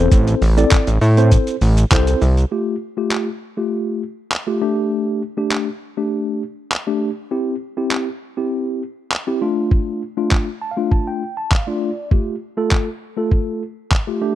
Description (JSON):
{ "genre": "dance-pop", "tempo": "100 BPM", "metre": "4/4", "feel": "straight", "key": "unclear", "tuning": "A4 = 439 Hz", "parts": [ { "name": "mellow tine electric piano", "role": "accompaniment", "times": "0.0-14.3 s", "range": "A3 to A5", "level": "-20 LUFS", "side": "left 1 dB", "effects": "medium stereo tremolo, sidechain pumping" }, { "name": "fat analog bass", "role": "bass", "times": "0.0-2.5 s", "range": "A1 to A2", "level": "-14 LUFS", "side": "equal", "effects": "sidechain pumping" }, { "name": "boom bap sampler-style drum kit", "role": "drums", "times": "0.1-14.1 s", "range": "handclaps, hi-hat, kick drum, shaker", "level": "-16 LUFS", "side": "equal", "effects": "none" } ], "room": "little or no reverb", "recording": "dry, close 1970s-style studio recording", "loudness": "-17 LUFS", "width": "side -12 dB against mid", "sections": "0.0-2.5 A section; 2.5-14.3 B section", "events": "tine electric piano fill 10.3-12.1", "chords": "0.0 Am; 2.5 Fadd9; 4.6 Gsus2; 7.3 C; 9.4 Dm; 12.1 Fadd9" }